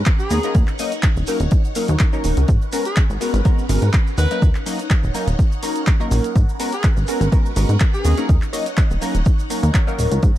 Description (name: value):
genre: filtered disco house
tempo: 124 BPM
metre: 4/4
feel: swing 53% on 16ths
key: unclear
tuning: A4 = 439 Hz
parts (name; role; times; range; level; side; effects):
- funky polysynth comp; accompaniment; 0.0-10.2 s; F#3 to D#5; -25 LUFS; left 1 dB; chorus, phaser, sidechain pumping
- phased string machine; sustained chords; 0.0-10.4 s; C#4 to F#5; -30 LUFS; left 1 dB; ensemble chorus, phaser, sidechain pumping
- plucky analog bass; bass; 0.0-10.3 s; D#1 to G#2; -18 LUFS; equal; sidechain pumping
- electronic kick drum; drums; 0.1-10.3 s; none; -16 LUFS; equal; overdrive
- punchy analog drum machine; drums; 0.1-10.4 s; handclaps, hi-hat, shaker; -28 LUFS; equal; overdrive
- egg shaker; percussion; 0.1-10.3 s; none; -40 LUFS; right 5 dB; none
- bright horn section; melody; 0.2-8.3 s; G#4 to B4; -28 LUFS; equal; sidechain pumping
room: little or no reverb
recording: dark, warm production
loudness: -16 LUFS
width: side -14 dB against mid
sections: 0.0-10.4 A section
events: none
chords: 0.0 G#m11; 0.5 D#m7; 2.5 G#m11; 4.4 D#m7; 6.4 G#m11; 8.3 D#m7